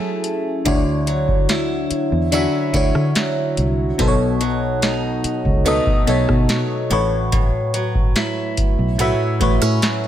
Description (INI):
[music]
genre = contemporary R&B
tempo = 72 BPM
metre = 4/4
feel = straight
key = unclear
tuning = A4 = 440 Hz
[part]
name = FM electric piano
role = accompaniment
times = 0.0-10.1 s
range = A2 to E5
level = -20 LUFS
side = left 1 dB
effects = chorus, phaser
[part]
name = picked acoustic archtop guitar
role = arpeggios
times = 0.0-10.1 s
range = A2 to G#4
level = -24 LUFS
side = right 2 dB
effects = ping-pong delay
[part]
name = booming analog drum machine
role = drums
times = 0.2-10.0 s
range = hi-hat, kick drum, rim click, snare drum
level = -20 LUFS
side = equal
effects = none
[part]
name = fingered electric bass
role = bass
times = 0.7-9.8 s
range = A1 to D3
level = -22 LUFS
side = equal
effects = none
[sound]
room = digital ambience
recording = none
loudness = -16 LUFS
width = side -11 dB against mid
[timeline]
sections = 0.0-10.1 A section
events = none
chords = 0.0 F#m9; 0.7 Dmaj9; 4.0 B7; 6.9 A6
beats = | 0.66 1.49 2.32 3.16 | 3.99 4.82 5.66 6.49 | 7.32 8.16 8.99 9.82